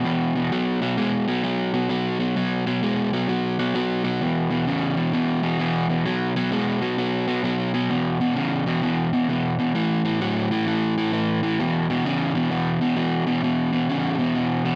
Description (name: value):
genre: blues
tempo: 130 BPM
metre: 4/4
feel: swing 65% on 8ths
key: E major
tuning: A4 = 440 Hz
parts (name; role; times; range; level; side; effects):
- overdriven semi-hollow guitar; solo; 0.0-14.8 s; E2 to G#3; -23 LUFS; equal; tape echo
room: wet small room ambience, RT60 0.5 s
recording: none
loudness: -23 LUFS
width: mono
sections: 0.0-7.9 A section; 7.9-14.8 B section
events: none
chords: 0.0 E5; 0.5 B5; 4.2 E5; 6.1 B5; 7.9 E5; 9.7 A5; 11.6 E5